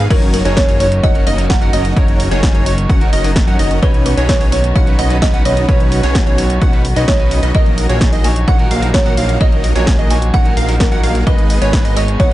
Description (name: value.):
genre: EDM, festival progressive house.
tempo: 129 BPM.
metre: 4/4.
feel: straight.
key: F# major.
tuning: A4 = 440 Hz.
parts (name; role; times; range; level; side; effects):
warm chamber string section; sustained chords; 0.0-12.3 s; D#3 to G#4; -28 LUFS; left 1 dB; none.
plucky unison lead; arpeggios; 0.0-12.3 s; C#5 to F#5; -23 LUFS; equal; sidechain pumping, tape echo.
big supersaw lead; riff; 0.0-12.3 s; A#3 to F#5; -22 LUFS; equal; sidechain pumping.
fat analog bass; bass; 0.0-12.3 s; F#1 to F#2; -17 LUFS; equal; sidechain pumping.
kalimba; melody; 0.1-12.3 s; A#4 to G#5; -21 LUFS; right 2 dB; tape echo.
electric guitar at the edge of break-up; accompaniment; 0.1-12.3 s; F#3 to C#5; -23 LUFS; right 2 dB; sidechain pumping.
big-room dance drum kit; drums; 0.1-12.3 s; crash cymbal, hi-hat, snare drum; -23 LUFS; equal; none.
electronic kick drum; drums; 0.1-12.3 s; none; -14 LUFS; equal; overdrive.
room: little or no reverb.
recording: dark, warm production, nothing above 10.8 kHz.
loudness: -11 LUFS.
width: side -15 dB against mid.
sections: 0.0-12.3 A section.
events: none.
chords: 0.1 F#6; 3.8 Badd9; 7.5 D#m/A#; 11.3 G#m.